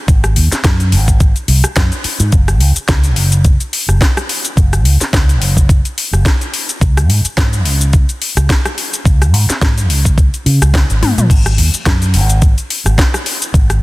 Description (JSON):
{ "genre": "nu-disco, nu disco", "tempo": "107 BPM", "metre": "4/4", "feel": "swing 56% on 16ths", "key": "unclear", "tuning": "A4 = 439 Hz", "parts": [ { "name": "fingered electric bass with an envelope filter", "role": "bass", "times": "0.1-13.8 s", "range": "Gb1 to Db3", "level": "-12 LUFS", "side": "equal", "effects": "none" }, { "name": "electronic kick drum", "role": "drums", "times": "0.1-13.7 s", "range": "none", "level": "-11 LUFS", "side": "equal", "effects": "none" }, { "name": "house drum kit", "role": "drums", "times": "0.1-13.8 s", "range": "cabasa, crash cymbal, hi-hat, rim click, snare drum, toms", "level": "-17 LUFS", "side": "left 2 dB", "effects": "overdrive" } ], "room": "little or no reverb", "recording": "dense, heavily limited modern master", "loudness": "-10 LUFS", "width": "side -20 dB against mid", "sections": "0.0-13.8 A section", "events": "drum fill 11.0", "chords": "none" }